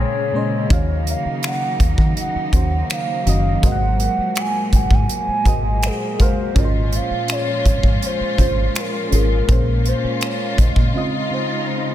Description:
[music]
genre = contemporary R&B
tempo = 82 BPM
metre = 4/4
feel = straight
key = Eb dorian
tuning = A4 = 442 Hz
[part]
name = gliding portamento lead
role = melody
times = 0.0-11.7 s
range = Ab4 to Ab5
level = -24 LUFS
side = equal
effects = chorus, analog delay
[part]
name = FM electric piano with soft pad layer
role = accompaniment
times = 0.0-11.9 s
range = Bb2 to Gb5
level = -25 LUFS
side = equal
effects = chorus
[part]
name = rich studio string section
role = sustained chords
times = 0.0-11.9 s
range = Bb2 to F4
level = -26 LUFS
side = equal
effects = none
[part]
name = twangy electric guitar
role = arpeggios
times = 0.0-0.7 s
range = C4 to Ab4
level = -32 LUFS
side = left 6 dB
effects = analog delay
[part]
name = deep dub fingered electric bass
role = bass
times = 0.0-10.9 s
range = Gb1 to Eb3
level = -19 LUFS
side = equal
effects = none
[part]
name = modern studio drum kit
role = drums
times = 0.7-10.9 s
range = finger snaps, hi-hat, kick drum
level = -19 LUFS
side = equal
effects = none
[sound]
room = light reverb, studio reverb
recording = none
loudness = -16 LUFS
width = side -12 dB against mid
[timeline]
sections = 0.0-11.9 A section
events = break 10.9-11.9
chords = 0.0 Bbm9; 0.7 Ebm9; 3.6 Ab9; 6.6 Dbmaj7/Ab; 9.5 Bbm9; 10.9 Dbmaj9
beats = | 0.71 1.44 2.17 2.90 | 3.63 4.36 5.10 5.83 | 6.56 7.29 8.02 8.76 | 9.49 10.22 10.95 11.68

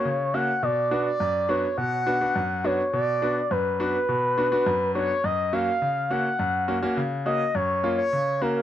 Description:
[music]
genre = pop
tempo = 104 BPM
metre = 4/4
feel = straight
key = F# major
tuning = A4 = 441 Hz
[part]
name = expressive synth lead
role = melody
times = 0.0-8.6 s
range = A#4 to F#5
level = -24 LUFS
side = equal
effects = chorus
[part]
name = clear concert grand piano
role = accompaniment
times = 0.0-8.6 s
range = F#2 to F#4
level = -26 LUFS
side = equal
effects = none
[sound]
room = moderate small room reverb, RT60 0.5 s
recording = none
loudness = -22 LUFS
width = side -11 dB against mid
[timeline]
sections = 0.0-8.6 A section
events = none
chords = 0.0 F#; 0.6 Bm; 5.2 F#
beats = 0.05 | 0.63 1.20 1.78 2.36 | 2.93 3.51 4.09 4.66 | 5.24 5.82 6.39 6.97 | 7.55 8.13

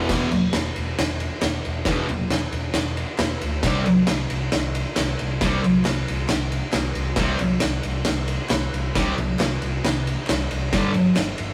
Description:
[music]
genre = garage rock duo or trio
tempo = 135 BPM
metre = 4/4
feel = straight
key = E minor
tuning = A4 = 440 Hz
[part]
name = thick fuzz guitar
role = riff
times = 0.0-10.9 s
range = E2 to C4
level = -23 LUFS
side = equal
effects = distortion
[part]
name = overdriven picked electric bass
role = bass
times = 0.0-11.5 s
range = E1 to D2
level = -29 LUFS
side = equal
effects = none
[part]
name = oversized low-tuned drum kit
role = drums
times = 0.1-11.5 s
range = crash cymbal, kick drum, ride cymbal, snare drum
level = -26 LUFS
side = equal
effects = none
[part]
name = group handclap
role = percussion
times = 0.5-11.3 s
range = none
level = -38 LUFS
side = equal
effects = none
[sound]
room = wet small room reverb, RT60 0.5 s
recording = rough rehearsal-room recording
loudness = -23 LUFS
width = mono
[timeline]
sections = 0.1-11.5 A section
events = none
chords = 0.1 E5; 3.6 C5; 10.7 G5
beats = | 0.11 0.55 0.99 1.43 | 1.87 2.31 2.76 3.20 | 3.64 4.08 4.53 4.97 | 5.41 5.86 6.30 6.74 | 7.19 7.63 8.07 8.52 | 8.96 9.40 9.85 10.29 | 10.73 11.17

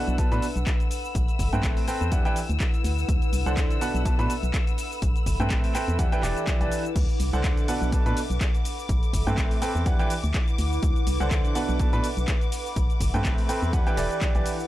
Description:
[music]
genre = piano house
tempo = 124 BPM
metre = 4/4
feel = swing 56% on 16ths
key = E minor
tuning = A4 = 439 Hz
[part]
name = rich studio string section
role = sustained chords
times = 0.0-14.7 s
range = D6 to E6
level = -38 LUFS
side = left 6 dB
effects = sidechain pumping
[part]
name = clear grand piano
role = riff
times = 0.0-14.6 s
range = A2 to B5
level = -28 LUFS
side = right 2 dB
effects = sidechain pumping
[part]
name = warbly tape-like pad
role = texture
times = 0.0-14.7 s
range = D4 to B5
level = -34 LUFS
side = left 1 dB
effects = chorus, built-in reverb, sidechain pumping
[part]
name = organ-like FM bass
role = bass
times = 0.1-14.4 s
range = E1 to A2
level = -26 LUFS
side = equal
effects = sidechain pumping
[part]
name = punchy analog drum machine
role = drums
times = 0.1-14.7 s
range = cabasa, crash cymbal, handclaps, hi-hat, ride cymbal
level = -35 LUFS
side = left 1 dB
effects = none
[part]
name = electronic kick drum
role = drums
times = 0.2-14.3 s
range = none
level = -25 LUFS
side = equal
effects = none
[sound]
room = little or no reverb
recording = dry, gritty hardware recording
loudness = -22 LUFS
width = side -15 dB against mid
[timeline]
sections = 0.0-14.7 A section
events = none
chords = 0.0 Bm7; 0.9 Am9; 2.1 Em7; 3.1 D7; 3.8 Bm7; 4.8 Am9; 6.0 Em7; 7.0 D7; 7.7 Bm7; 8.7 Am9; 9.9 Em7; 10.8 D7; 11.6 Bm7; 12.5 Am9; 13.7 Em7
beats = 0.18 0.67 | 1.15 1.64 2.12 2.60 | 3.09 3.57 4.05 4.54 | 5.02 5.51 5.99 6.47 | 6.96 7.44 7.92 8.41 | 8.89 9.38 9.86 10.35 | 10.83 11.31 11.80 12.28 | 12.76 13.25 13.73 14.22

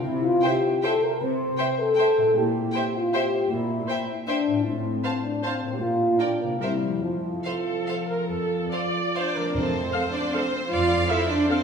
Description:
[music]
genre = classical, orchestral ballroom waltz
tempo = 135-170 BPM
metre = 3/4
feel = rubato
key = F major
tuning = A4 = 440 Hz
[part]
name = mellow French horn section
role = sustained chords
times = 0.0-9.4 s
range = F3 to C5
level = -24 LUFS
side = left 1 dB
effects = none
[part]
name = concert harp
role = arpeggios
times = 0.0-11.6 s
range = A2 to A4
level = -33 LUFS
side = left 4 dB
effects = none
[part]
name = dark studio cello section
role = bass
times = 0.1-11.6 s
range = F2 to F4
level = -29 LUFS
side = right 2 dB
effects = none
[part]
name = clear chamber violin section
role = melody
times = 0.4-11.6 s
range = C5 to A5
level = -32 LUFS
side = left 2 dB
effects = none
[part]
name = rich chamber viola section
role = accompaniment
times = 0.4-11.6 s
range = A4 to F5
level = -30 LUFS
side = right 1 dB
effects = none
[part]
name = rich chamber violin section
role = second line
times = 0.5-11.6 s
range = A4 to F5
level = -34 LUFS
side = equal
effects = none
[part]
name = timpani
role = percussion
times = 9.5-10.1 s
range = F2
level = -37 LUFS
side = right 1 dB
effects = none
[part]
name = rich chamber double bass section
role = bass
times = 9.6-11.0 s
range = F2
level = -30 LUFS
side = right 4 dB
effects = none
[sound]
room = wet recital hall reverb, RT60 1.6 s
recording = recorded in a church or concert hall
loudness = -22 LUFS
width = side -6 dB against mid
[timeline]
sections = 0.0-9.6 A section; 9.6-11.6 A section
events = none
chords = 0.1 C; 2.4 C7/Bb; 4.7 F/A; 5.8 Gm7/Bb; 6.6 C7; 7.0 F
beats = | 0.05 0.43 0.83 | 1.20 1.58 1.98 | 2.36 2.74 3.14 | 3.51 3.88 4.28 | 4.65 5.04 5.44 | 5.81 6.20 6.61 | 7.02 7.44 7.88 | 8.30 8.72 9.16 | 9.55 9.94 10.34 | 10.71 11.09 11.49

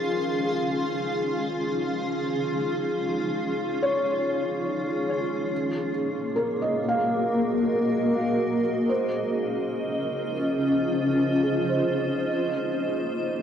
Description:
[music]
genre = ambient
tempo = free time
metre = none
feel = none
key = unclear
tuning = A4 = 441 Hz
[part]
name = granular cloud pad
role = sustained chords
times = 0.0-13.4 s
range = Bb3 to C6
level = -24 LUFS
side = equal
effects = built-in reverb
[part]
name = felt-muted upright piano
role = arpeggios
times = 0.0-13.4 s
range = Ab4 to F5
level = -29 LUFS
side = equal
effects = tape echo
[part]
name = overtone-sweeping drone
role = drone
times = 0.0-5.6, 13.2-13.4 s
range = Eb3 to Eb4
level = -37 LUFS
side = right 1 dB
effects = chorus, built-in reverb, phaser
[sound]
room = wet huge ambient reverb, RT60 8.6 s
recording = dark, warm production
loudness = -23 LUFS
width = side -8 dB against mid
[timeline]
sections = 0.0-5.5 A section; 5.5-13.4 B section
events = fade-out on felt piano 5.5-13.4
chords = 0.0 Dbmaj7; 5.5 Ab9; 8.9 Dbmaj9; 12.3 Ab9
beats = free time

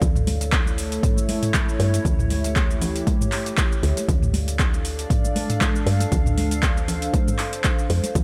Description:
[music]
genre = afro house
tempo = 118 BPM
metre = 4/4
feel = swing 55% on 16ths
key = unclear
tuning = A4 = 439 Hz
[part]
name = dark analog pad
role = sustained chords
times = 0.0-8.2 s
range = A3 to F5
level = -31 LUFS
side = equal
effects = chorus, phaser, sidechain pumping
[part]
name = woody FM bass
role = bass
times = 0.0-8.2 s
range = D2 to G2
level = -26 LUFS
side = equal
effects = sidechain pumping
[part]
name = afro-pop drum kit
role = drums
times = 0.0-8.2 s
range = handclaps, hi-hat, shaker, toms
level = -29 LUFS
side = equal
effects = none
[part]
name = electronic kick drum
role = drums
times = 0.0-8.2 s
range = none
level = -24 LUFS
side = equal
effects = none
[part]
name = congas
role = percussion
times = 0.0-8.2 s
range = none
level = -32 LUFS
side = equal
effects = none
[sound]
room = little or no reverb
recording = none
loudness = -22 LUFS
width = mono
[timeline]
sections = 0.0-8.2 A section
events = none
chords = 0.0 A7/D; 4.1 Dm7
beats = | 0.02 0.53 1.03 1.54 | 2.05 2.56 3.07 3.58 | 4.08 4.59 5.10 5.61 | 6.12 6.63 7.13 7.64 | 8.15

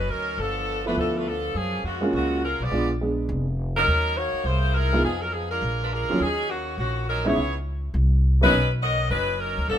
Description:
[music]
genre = jazz, big band swing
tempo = 206 BPM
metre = 4/4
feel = swing 61% on 8ths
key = Eb minor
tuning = A4 = 440 Hz
[part]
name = bright saxophone section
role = melody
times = 0.0-9.8 s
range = Db3 to D#5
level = -24 LUFS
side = left 1 dB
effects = none
[part]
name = upright bass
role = bass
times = 0.0-9.8 s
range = F1 to Gb2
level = -25 LUFS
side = equal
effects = none
[part]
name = warm grand piano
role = accompaniment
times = 0.9-8.5 s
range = Eb2 to Ab4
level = -25 LUFS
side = right 2 dB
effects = none
[sound]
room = light reverb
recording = minimal, uncompressed stereo recording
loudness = -21 LUFS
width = side -10 dB against mid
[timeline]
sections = 0.0-6.2 A section; 6.2-9.8 A section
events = none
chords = 0.4 G13; 1.6 Gbmaj9; 2.7 Bb7b9; 3.9 Ebm7; 4.5 C7alt; 5.0 Fm7b5; 5.6 Bb7; 6.2 Ebm7; 7.4 Dbm7; 8.0 Cm7b5; 8.5 Bmaj9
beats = 0.10 | 0.39 0.68 0.97 1.26 | 1.55 1.84 2.13 2.43 | 2.72 3.01 3.30 3.59 | 3.88 4.17 4.46 4.75 | 5.04 5.33 5.62 5.91 | 6.20 6.50 6.79 7.08 | 7.37 7.66 7.95 8.24 | 8.53 8.82 9.11 9.40 | 9.70

